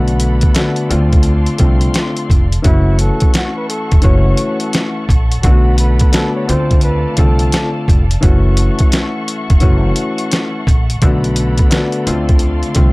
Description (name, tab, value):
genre	hip hop, boom-bap hip-hop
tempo	86 BPM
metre	4/4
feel	swing 63% on 16ths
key	F# minor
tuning	A4 = 436 Hz
part	dark grand piano	accompaniment	0.0-12.9 s	D3 to F#4	-18 LUFS	left 2 dB	cassette tape, high-pass filter, low-pass filter
part	warm studio string section	sustained chords	0.0-12.9 s	A4 to C#6	-27 LUFS	left 1 dB	high-pass filter, low-pass filter
part	upright bass	bass	0.0-12.9 s	E1 to D2	-14 LUFS	equal	none
part	boom bap sampler-style drum kit	drums	0.1-12.9 s	hi-hat, kick drum, snare drum	-13 LUFS	equal	none
part	trumpet with bucket mute	melody	2.6-7.7 s	E4 to C#5	-23 LUFS	equal	high-pass filter, low-pass filter, tape echo
room	little or no reverb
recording	dry, gritty hardware recording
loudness	-11 LUFS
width	side -24 dB against mid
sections	0.0-12.9 A section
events	none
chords	0.0 Bm7; 0.9 Dm7; 2.6 F#m7; 5.4 Bm7; 6.5 Dm7; 8.2 F#m7; 11.0 Bm7; 12.1 Dm7